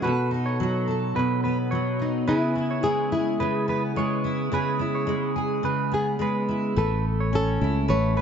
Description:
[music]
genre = acoustic pop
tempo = 107 BPM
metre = 4/4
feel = straight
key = unclear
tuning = A4 = 440 Hz
[part]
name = nylon-string guitar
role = melody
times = 0.0-8.2 s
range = D#4 to C#5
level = -28 LUFS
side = left 1 dB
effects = none
[part]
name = fingerpicked steel-string acoustic guitar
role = accompaniment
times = 0.0-8.2 s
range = B2 to A4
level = -25 LUFS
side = equal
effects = double-tracked left and right
[part]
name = clean electric guitar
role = arpeggios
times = 0.0-8.2 s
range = G#4 to C#5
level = -30 LUFS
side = right 4 dB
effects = tape echo
[part]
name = sustaining fretless electric bass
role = bass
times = 6.8-8.2 s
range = A1 to C#2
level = -23 LUFS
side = equal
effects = analog chorus
[sound]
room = light reverb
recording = nothing above 7.9 kHz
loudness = -22 LUFS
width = side -7 dB against mid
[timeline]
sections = 0.0-6.8 A section; 6.8-8.2 B section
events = none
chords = 0.0 B7; 2.3 C#m7; 6.8 A

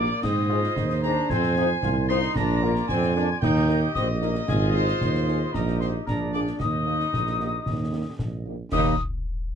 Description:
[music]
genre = military-style march for wind band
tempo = 113 BPM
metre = 2/4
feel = straight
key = Eb major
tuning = A4 = 440 Hz
[part]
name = dark trumpet section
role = melody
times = 0.0-8.9 s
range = Ab4 to C6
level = -32 LUFS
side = equal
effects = none
[part]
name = mellow wooden piccolo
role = second line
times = 0.0-9.0 s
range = Ab5 to C7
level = -30 LUFS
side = left 4 dB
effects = none
[part]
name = mellow woodwind section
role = second line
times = 0.0-8.9 s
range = F4 to Eb5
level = -34 LUFS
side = right 1 dB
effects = none
[part]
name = mellow French horn section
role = accompaniment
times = 0.0-8.9 s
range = Bb3 to C5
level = -29 LUFS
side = left 4 dB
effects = none
[part]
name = clear trombone section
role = sustained chords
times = 0.0-9.0 s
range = G3 to F4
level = -30 LUFS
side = left 1 dB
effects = none
[part]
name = mellow tuba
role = bass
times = 0.0-8.9 s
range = Ab1 to Ab2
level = -25 LUFS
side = right 3 dB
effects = none
[part]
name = concert snare drum, clash cymbals and concert bass drum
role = drums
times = 0.2-9.0 s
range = none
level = -31 LUFS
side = left 1 dB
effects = none
[sound]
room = moderate booth ambience, RT60 0.2 s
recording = dark, warm production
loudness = -22 LUFS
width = side -8 dB against mid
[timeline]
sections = 0.0-8.7 A section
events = none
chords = 0.2 Ab; 1.3 Fm; 2.4 Bb; 3.4 Eb; 4.5 Ab; 5.5 Eb/Bb; 6.1 Bb7; 6.6 Eb

